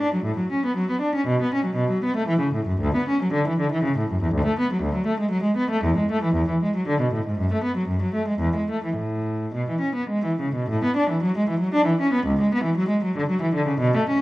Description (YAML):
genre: classical, baroque-style suite movement for unaccompanied cello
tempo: 101-122 BPM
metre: 3/4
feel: rubato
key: A major from 4.3 s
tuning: A4 = 441 Hz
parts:
  - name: rich cello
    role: solo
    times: 0.0-14.2 s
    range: C#2 to D4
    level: -20 LUFS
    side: equal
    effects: none
room: moderate large studio reverb, RT60 1.4 s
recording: worn, warbling old tape, cassette tape, warbly pitch drift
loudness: -21 LUFS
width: side -18 dB against mid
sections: 0.0-10.7 A section; 10.7-14.2 B section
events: none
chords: none